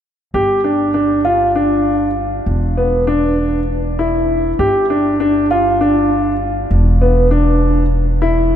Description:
progressive instrumental, band music in an uneven meter; 198 BPM (eighths); 7/8; straight; G mixolydian; A4 = 440 Hz
warm concert grand piano; arpeggios; 0.3-8.6 s; B3 to G4; -14 LUFS; equal
upright bass; bass; 0.3-8.6 s; E1 to G1; -18 LUFS; equal
wet cathedral reverb, RT60 5.9 s; in a vast, echoing space; -13 LUFS; side -10 dB against mid
0.3-8.6 A section
0.3 G5; 2.5 E5; 4.6 G5; 6.7 E5

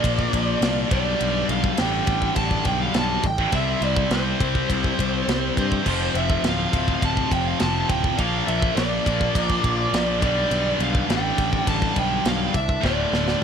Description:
heavy metal; 103 BPM; 4/4; straight; A4 = 440 Hz
smooth overdriven lead guitar; melody; 0.0-13.4 s; C5 to A5; -26 LUFS; right 2 dB
heavy high-gain guitar; riff; 0.0-13.4 s; D2 to C4; -28 LUFS; right 15 dB; distortion
heavy high-gain guitar; riff; 0.0-13.4 s; D2 to C5; -30 LUFS; equal; distortion
high-gain distorted guitar; riff; 0.0-13.4 s; D2 to C4; -27 LUFS; left 14 dB; distortion
fuzz picked electric bass; bass; 0.0-13.3 s; D1 to G2; -26 LUFS; equal; overdrive
tight metal drum kit; drums; 0.0-13.4 s; crash cymbal, kick drum, ride cymbal, snare drum; -26 LUFS; equal
studio ambience; -19 LUFS; side -7 dB against mid
0.0-13.4 A section
drum fill 12.8-13.4
0.0 Bb; 0.9 G; 3.5 C; 5.9 F; 8.2 Bb; 10.2 G; 12.8 Dm

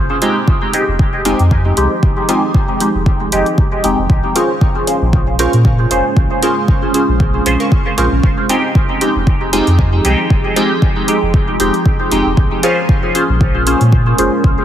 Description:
dub techno; 116 BPM; 4/4; swing 55% on 16ths; F minor; A4 = 440 Hz
deep dark ambient pad; sustained chords; 0.0-14.6 s; F3 to C5; -22 LUFS; right 2 dB; chorus, built-in reverb, sidechain pumping
warm sub bass; bass; 0.0-14.5 s; F1 to Bb2; -16 LUFS; equal; sidechain pumping
wavetable chord stab; riff; 0.2-12.7 s; F4 to Db6; -25 LUFS; right 1 dB; sidechain pumping, dub echo
resonant sweep polysynth; stabs; 0.2-14.3 s; Ab3 to C5; -15 LUFS; equal; chorus, phaser, vintage 12-bit sampler grit, sidechain pumping, dub echo
electronic hi-hat; drums; 0.2-14.3 s; -20 LUFS; right 1 dB; overdrive
electronic kick drum; drums; 0.5-14.6 s; -13 LUFS; equal
light reverb, digital ambience; heavily compressed radio sound; -11 LUFS; side -10 dB against mid
0.0-14.6 A section
0.0 Fm7; 4.1 Bbm7; 8.2 Fm7; 12.4 Bbm7

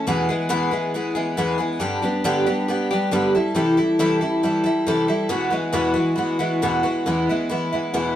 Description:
rock; 137 BPM; 4/4; straight; E major; A4 = 439 Hz
picked twelve-string acoustic guitar; solo; 0.0-8.2 s; E2 to A4; -19 LUFS; equal
wet studio reverb, RT60 0.8 s; band playing live in one room; -19 LUFS; side -11 dB against mid
0.0-7.1 A section; 7.1-8.2 B section
0.1 E; 1.8 G; 3.4 C6; 5.3 Eadd9; 7.1 E

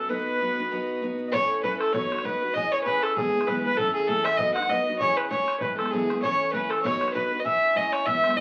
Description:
celtic folk, Celtic reel; 196 BPM; 4/4; swing 56% on 8ths; B mixolydian; A4 = 440 Hz
rich fiddle; melody; 0.0-8.4 s; G#4 to F#5; -28 LUFS; equal
warm clarinet; second line; 0.0-8.4 s; G#4 to F#5; -31 LUFS; equal
picked steel-string acoustic guitar; accompaniment; 0.0-8.4 s; A2 to C#5; -33 LUFS; equal
pedal harmonium; drone; 0.0-1.4 s; B2 to B3; -44 LUFS; equal
bodhran; percussion; 1.3-8.4 s; -39 LUFS; equal
wet small room reverb, RT60 0.5 s; very old 78 rpm record, vinyl crackle; -25 LUFS; mono
0.0-1.3 A section; 1.3-8.4 B section
0.1 B; 1.3 A; 1.9 B; 2.6 C#m; 3.2 E; 3.8 A; 4.4 B; 5.0 C#m; 5.6 E; 6.2 A; 6.8 B; 7.4 C#m

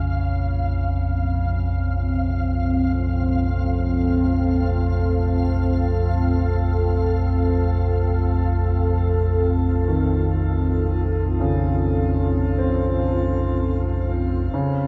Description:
dark ambient drone; free time; Bb harmonic minor; A4 = 440 Hz
deep dark ambient pad; sustained chords; 1.0-14.9 s; C4 to A4; -27 LUFS; equal; chorus, built-in reverb, shimmer reverb
dark concert grand piano; arpeggios; 0.0-14.9 s; Db3 to C4; -30 LUFS; equal; delay, shimmer reverb
deep rumbling drone; drone; 0.0-14.9 s; Bb1 to F2; -23 LUFS; equal; built-in reverb, lush chorus
flickering grainy texture; texture; 0.0-14.9 s; F5 to Db6; -37 LUFS; equal; built-in reverb, shimmer reverb
moderate huge ambient reverb, RT60 7.2 s; -21 LUFS; mono
0.0-14.5 A section
fade-out on synth texture 0.0-14.5
0.0 Bbmadd9

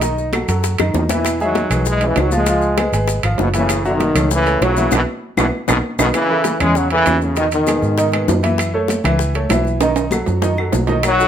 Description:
latin, salsa; 196 BPM; 4/4; straight; E major; A4 = 440 Hz
clear concert grand piano; accompaniment; 0.0-11.3 s; C#3 to F5; -21 LUFS; right 1 dB
vintage muted fingered electric bass; bass; 0.0-11.3 s; F#1 to G#2; -20 LUFS; equal
bongos; percussion; 0.0-11.2 s; -25 LUFS; left 9 dB
congas; percussion; 0.0-11.3 s; -26 LUFS; left 2 dB
maracas; percussion; 0.0-11.3 s; -30 LUFS; left 5 dB
timbales; percussion; 0.0-11.2 s; -24 LUFS; right 8 dB
claves; percussion; 0.3-11.2 s; -28 LUFS; left 1 dB
bright trombone section; melody; 1.0-8.4, 11.1-11.3 s; G#2 to G#3; -18 LUFS; left 1 dB
moderate large studio reverb, RT60 0.8 s; -14 LUFS; side -9 dB against mid
0.0-6.1 A section; 6.1-11.3 B section
drum fill 0.8-1.2, 5.5-6.1, 9.8-11.0; band accent 4.9-6.1
0.0 B7; 1.2 Emaj7; 2.5 C#7; 3.7 F#m7; 4.9 B7sus4; 5.5 B7; 6.1 A; 7.4 Emaj7; 8.6 F#m7; 9.8 B7

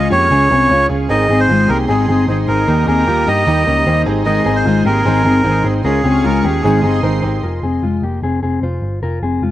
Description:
indie pop; 152 BPM; 4/4; straight; Ab major; A4 = 439 Hz
melodica; melody; 0.0-7.0 s; Ab4 to Eb5; -16 LUFS; right 1 dB
fingerpicked plugged-in steel-string acoustic guitar; accompaniment; 0.0-7.4 s; Ab2 to F4; -20 LUFS; right 4 dB
warm upright piano; accompaniment; 0.0-7.5 s; Bb3 to Bb4; -25 LUFS; right 3 dB
lush unison pad; sustained chords; 0.0-7.4 s; G4 to Db6; -26 LUFS; right 2 dB; chorus
mellow electric guitar; arpeggios; 0.0-9.5 s; Ab3 to Db5; -17 LUFS; left 5 dB
vintage muted picked electric bass; bass; 0.0-9.5 s; F1 to G2; -18 LUFS; equal
little or no reverb; recorded outdoors, with no room sound; -12 LUFS; side -14 dB against mid
0.0-7.4 A section; 7.4-9.5 B section
0.0 Db; 1.1 Ab; 2.7 Eb; 4.1 Ab; 5.8 Db; 6.6 Ab; 7.4 Fm

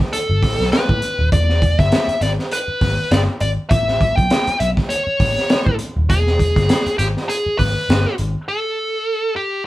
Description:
funk; 100 BPM; 4/4; swing 56% on 16ths; E mixolydian; A4 = 439 Hz
crunchy breakbeat drum kit; drums; 0.0-8.3 s; hi-hat, kick drum, snare drum; -18 LUFS; equal
nasal lead guitar with a parked wah; melody; 0.1-9.7 s; G4 to G5; -20 LUFS; equal; overdrive
vintage muted picked electric bass; bass; 0.3-8.3 s; D#1 to A2; -19 LUFS; equal
moderate studio reverb, RT60 0.6 s; band playing live in one room; -15 LUFS; side -16 dB against mid
0.0-9.7 A section
break 8.5-9.7
0.0 Asus2; 1.3 E; 3.7 Aadd9; 6.1 E; 8.5 N.C.

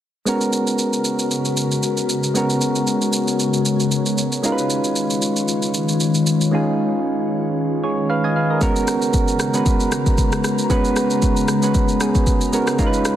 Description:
amapiano; 115 BPM; 4/4; swing 55% on 16ths; G# dorian; A4 = 441 Hz
soft electric-piano-like synth keys; accompaniment; 0.3-13.2 s; G#3 to G#5; -20 LUFS; right 2 dB; chorus
glassy FM pad; sustained chords; 0.8-13.2 s; C#3 to A#5; -22 LUFS; left 3 dB; ensemble chorus, built-in reverb, phaser, sidechain pumping
afro-pop drum kit; drums; 0.3-13.2 s; kick drum, rim click, shaker; -22 LUFS; equal; soft clipping on snare
light reverb, digital ambience; dense, heavily limited modern master; -17 LUFS; side -11 dB against mid
0.3-8.6 A section; 8.6-13.2 B section
0.3 G#m11; 4.4 C#9; 8.6 G#m11

